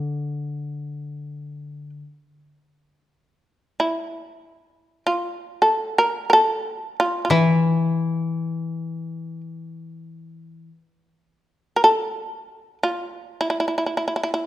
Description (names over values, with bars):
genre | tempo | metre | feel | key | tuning
japanese traditional, Japanese chamber music | free time | none | none | D hirajoshi | A4 = 441 Hz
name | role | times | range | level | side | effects
shamisen | melody | 0.0-14.4 s | D4 to Bb4 | -19 LUFS | equal | none
koto | accompaniment | 0.0-2.0, 7.3-10.7 s | D3 to E3 | -23 LUFS | left 3 dB | none
room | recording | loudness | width
moderate recital hall reverb, RT60 1.7 s | none | -20 LUFS | side -13 dB against mid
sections
0.0-2.6 A section; 2.6-14.5 A section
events
none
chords
none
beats
free time